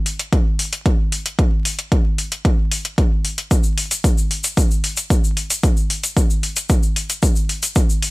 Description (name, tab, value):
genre	techno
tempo	113 BPM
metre	4/4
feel	straight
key	none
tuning	none
part	electronic hi-hat	drums	0.1-8.1 s	none	-23 LUFS	left 2 dB	overdrive, small room ambience
part	electronic kick drum	drums	0.3-7.9 s	none	-16 LUFS	equal	overdrive, small room ambience
part	egg shaker	percussion	3.5-8.0 s	none	-23 LUFS	left 2 dB	none
room	studio reverb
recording	vinyl crackle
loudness	-16 LUFS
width	side -22 dB against mid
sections	0.0-8.1 A section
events	none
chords	none